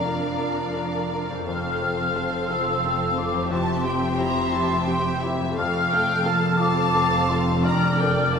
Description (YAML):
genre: cinematic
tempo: 58 BPM (dotted quarters)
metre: 6/8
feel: rubato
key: F major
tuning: A4 = 439 Hz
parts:
  - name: rich symphonic violin section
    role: melody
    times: 0.0-8.4 s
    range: D5 to F5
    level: -34 LUFS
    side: left 2 dB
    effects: none
  - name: mellow large flute ensemble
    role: second line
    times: 0.0-8.4 s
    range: Bb5 to F6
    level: -25 LUFS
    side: left 2 dB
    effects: none
  - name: warm symphonic violin section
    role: second line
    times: 0.0-8.4 s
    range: C5 to Bb5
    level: -30 LUFS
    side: left 1 dB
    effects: none
  - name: bright grand piano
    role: accompaniment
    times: 0.0-8.4 s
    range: F2 to Bb4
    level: -29 LUFS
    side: left 2 dB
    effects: none
  - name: warm symphonic viola section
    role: accompaniment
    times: 0.0-8.4 s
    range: A3 to D5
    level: -30 LUFS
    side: equal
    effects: none
  - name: concert harp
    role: arpeggios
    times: 0.0-8.4 s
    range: F2 to Bb4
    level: -34 LUFS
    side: left 7 dB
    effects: none
  - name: clear symphonic double bass section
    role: bass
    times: 0.0-8.4 s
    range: F1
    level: -30 LUFS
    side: right 3 dB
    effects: none
  - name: warm symphonic cello section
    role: bass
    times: 0.0-8.4 s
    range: F2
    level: -28 LUFS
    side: right 2 dB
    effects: none
room: wet scoring stage reverb, RT60 2.0 s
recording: minimal, uncompressed stereo recording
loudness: -20 LUFS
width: side -6 dB against mid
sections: 0.0-8.4 A section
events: none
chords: 0.0 Bb/F; 1.5 F; 3.5 C/F; 5.6 F; 7.6 Bb/F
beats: 0.40 | 1.47 2.50 | 3.51 4.52 | 5.58 6.59 | 7.65